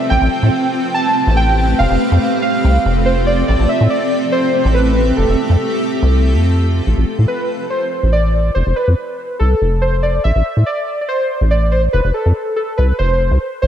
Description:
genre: IDM.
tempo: 142 BPM.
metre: 4/4.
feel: straight.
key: A minor.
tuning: A4 = 440 Hz.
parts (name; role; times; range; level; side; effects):
warbly lo-fi synth keys; melody; 0.0-13.7 s; A4 to A5; -18 LUFS; right 1 dB; chorus, analog delay.
granular cloud pad; sustained chords; 0.0-6.9 s; A3 to E5; -18 LUFS; equal; built-in reverb.
deep acid bass; bass; 0.1-13.7 s; F1 to A2; -13 LUFS; equal; none.
room: moderate plate reverb, RT60 2.4 s.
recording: dreamy mix soaked in reverb.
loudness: -13 LUFS.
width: side -10 dB against mid.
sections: 0.0-6.9 A section; 6.9-13.7 B section.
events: none.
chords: 0.1 Am7; 1.8 F; 3.5 Am7; 5.2 F; 6.9 Am; 8.6 F; 10.3 Am; 11.9 F.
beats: | 0.11 0.54 0.96 1.38 | 1.80 2.23 2.65 3.07 | 3.49 3.92 4.34 4.76 | 5.18 5.61 6.03 6.45 | 6.87 7.29 7.72 8.14 | 8.56 8.98 9.41 9.83 | 10.25 10.68 11.10 11.52 | 11.94 12.37 12.79 13.21 | 13.63.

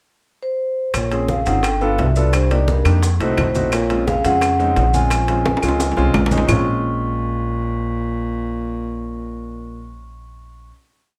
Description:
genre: Afro-Cuban jazz.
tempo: 173 BPM.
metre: 4/4.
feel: straight.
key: Bb minor.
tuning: A4 = 439 Hz.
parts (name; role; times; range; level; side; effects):
vibraphone with soft mallets; melody; 0.4-10.7 s; Bb4 to Db6; -25 LUFS; equal; none.
upright bass; bass; 0.9-10.7 s; G1 to F2; -23 LUFS; equal; none.
bongos; percussion; 0.9-6.6 s; none; -32 LUFS; equal; none.
claves; percussion; 0.9-6.6 s; none; -30 LUFS; equal; none.
congas; percussion; 0.9-6.6 s; none; -28 LUFS; equal; none.
maracas; percussion; 0.9-6.6 s; none; -36 LUFS; equal; none.
timbales; percussion; 0.9-6.6 s; none; -28 LUFS; equal; none.
dark baritone saxophone; second line; 1.0-10.0 s; G2 to F3; -28 LUFS; equal; none.
warm baby grand piano; accompaniment; 1.1-10.7 s; Ab3 to A4; -26 LUFS; equal; none.
room: light reverb.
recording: none.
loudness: -18 LUFS.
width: mono.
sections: 0.0-0.9 pickup bar; 0.9-6.5 A section; 6.5-9.2 final chord.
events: drum fill 5.5-6.5.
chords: 0.0 N.C.; 0.9 Bbm7; 1.6 G7; 2.3 Cm9; 3.0 F7b9; 3.7 Bbm7.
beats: 0.25 0.59 | 0.94 1.29 1.64 1.99 | 2.33 2.68 3.03 3.38 | 3.73 4.07 4.42 4.77 | 5.11 5.46 5.80 6.15 | 6.49 6.84 7.18 7.52 | 7.87 8.21 8.55 8.90.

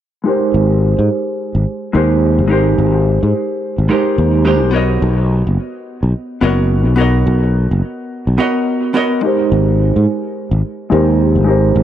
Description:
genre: sunset chillout.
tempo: 107 BPM.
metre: 4/4.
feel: swing 57% on 16ths.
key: Ab major.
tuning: A4 = 443 Hz.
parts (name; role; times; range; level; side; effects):
vintage hollow-body jazz guitar; accompaniment; 0.2-11.8 s; Ab3 to D#5; -16 LUFS; right 1 dB; auto-pan, low-pass filter, analog delay.
sustaining fretless electric bass; bass; 0.5-11.8 s; F#1 to Ab2; -13 LUFS; equal; none.
room: light reverb.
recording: dry, gritty hardware recording, cassette tape.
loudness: -12 LUFS.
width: side -11 dB against mid.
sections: 0.3-9.2 A section; 9.2-11.8 B section.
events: filter sweep on hollow-body jazz guitar 0.3-9.2, 9.2-11.8.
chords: 0.3 Abmaj9; 4.7 Bmaj9; 9.2 Abmaj9.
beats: | 0.26 0.82 1.38 1.94 | 2.50 3.06 3.63 4.19 | 4.75 5.31 5.87 6.43 | 6.99 7.55 8.11 8.67 | 9.23 9.79 10.36 10.91 | 11.48.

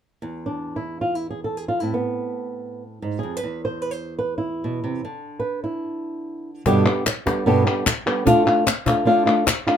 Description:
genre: flamenco.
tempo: free time.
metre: none.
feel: none.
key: unclear.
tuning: A4 = 440 Hz.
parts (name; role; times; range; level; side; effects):
flamenco guitar; melody; 0.2-9.8 s; E2 to C5; -21 LUFS; right 1 dB; none.
cajon; percussion; 6.7-9.7 s; none; -24 LUFS; left 4 dB; none.
palmas hand claps; percussion; 6.9-9.8 s; none; -24 LUFS; left 3 dB; none.
room: moderate small room reverb, RT60 0.5 s.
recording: minimal, uncompressed stereo recording.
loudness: -20 LUFS.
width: side -8 dB against mid.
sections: 0.2-6.7 A section; 6.7-9.8 B section.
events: none.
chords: 0.2 N.C.; 1.8 Am; 3.4 E5; 5.1 N.C.; 6.7 G; 8.3 Dm.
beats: free time.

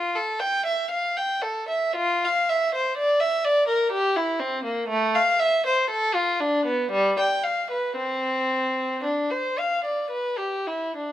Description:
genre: classical, baroque-style suite movement for unaccompanied violin.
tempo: 52-64 BPM.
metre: 3/4.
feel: rubato.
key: unclear.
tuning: A4 = 440 Hz.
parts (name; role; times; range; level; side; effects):
dark violin; solo; 0.0-11.1 s; G3 to G5; -22 LUFS; equal; none.
room: light reverb.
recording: close, detailed microphones.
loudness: -22 LUFS.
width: side -12 dB against mid.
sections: 0.0-11.1 A section.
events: none.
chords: none.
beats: 0.91 | 1.97 2.98 3.93 | 4.90 5.89 6.90 | 7.94 9.02 10.10.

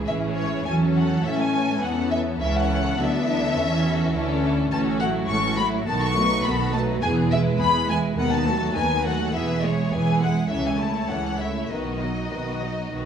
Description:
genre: quick classical-period movement for string orchestra.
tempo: 103 BPM.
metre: 4/4.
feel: straight.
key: A major, E major from 4.7 s.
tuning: A4 = 440 Hz.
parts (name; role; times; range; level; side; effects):
rich studio violin section; second line; 0.0-13.1 s; C#4 to D#5; -30 LUFS; left 2 dB; none.
warm studio viola section; accompaniment; 0.0-13.1 s; D#3 to F#4; -26 LUFS; equal; none.
rich studio double bass section; bass; 0.0-13.1 s; E1 to A2; -29 LUFS; right 3 dB; none.
warm studio cello section; bass; 0.0-13.1 s; D#2 to A3; -27 LUFS; right 2 dB; none.
warm studio violin section; melody; 0.1-13.1 s; C#5 to C#6; -26 LUFS; left 3 dB; none.
room: wet recital hall reverb, RT60 1.7 s.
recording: small room ambience.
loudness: -20 LUFS.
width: side -8 dB against mid.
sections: 0.0-13.1 A section.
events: none.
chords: 0.1 A; 2.4 A/C#; 4.7 F#m7/A; 5.9 B7; 7.0 E; 8.2 B7/D#; 9.3 E; 10.5 A/C#; 11.7 B.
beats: | 0.07 0.65 1.24 1.82 | 2.40 2.98 3.55 4.13 | 4.71 5.29 5.86 6.44 | 7.02 7.60 8.18 8.76 | 9.34 9.92 10.50 11.10 | 11.70 12.32 12.93.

